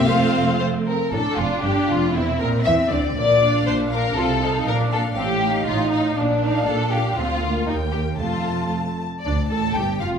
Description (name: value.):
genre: quick classical-period movement for string orchestra.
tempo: 118 BPM.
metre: 2/4.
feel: straight.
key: F major.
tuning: A4 = 440 Hz.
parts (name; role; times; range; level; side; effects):
warm studio violin section; melody; 0.0-10.1 s; E4 to A5; -28 LUFS; left 4 dB; none.
warm studio violin section; second line; 0.0-10.2 s; D4 to E5; -23 LUFS; left 2 dB; none.
rich studio viola section; accompaniment; 0.0-10.2 s; A3 to A4; -25 LUFS; right 2 dB; none.
dark studio double bass section; bass; 0.0-10.2 s; E1 to E2; -26 LUFS; right 2 dB; none.
warm studio cello section; bass; 0.0-10.2 s; D2 to E3; -26 LUFS; right 2 dB; none.
room: wet recital hall reverb, RT60 1.5 s.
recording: minimal, uncompressed stereo recording.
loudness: -18 LUFS.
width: side -7 dB against mid.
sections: 0.0-1.1 A section; 1.1-9.3 A section.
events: none.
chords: 0.1 F; 2.1 C7/E; 2.6 Cadd9; 3.1 Bb; 4.2 F7/C; 4.7 Bb; 5.2 F7/A; 6.2 Bb; 7.2 Dm; 7.7 Eb; 8.2 F; 9.3 F69.